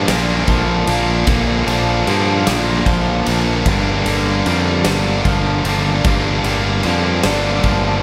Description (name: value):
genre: post-rock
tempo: 50 BPM (dotted quarters)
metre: 6/8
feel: straight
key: G minor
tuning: A4 = 441 Hz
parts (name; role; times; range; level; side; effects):
- twangy electric guitar; arpeggios; 0.0-8.0 s; G2 to F3; -25 LUFS; equal; spring reverb, analog delay
- distorted electric guitar; riff; 0.0-8.0 s; G2 to D4; -24 LUFS; equal; distortion
- distorted electric guitar; riff; 0.0-8.0 s; G2 to D4; -22 LUFS; equal; overdrive
- modern bright fingered electric bass; bass; 0.0-8.0 s; G1 to G2; -22 LUFS; equal; none
- big rock drum kit; drums; 0.1-7.8 s; kick drum, ride cymbal, snare drum; -23 LUFS; equal; none
room: light reverb, studio reverb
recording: none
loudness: -16 LUFS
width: mono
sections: 0.0-8.0 A section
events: none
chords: 0.0 Bb; 3.7 Gm7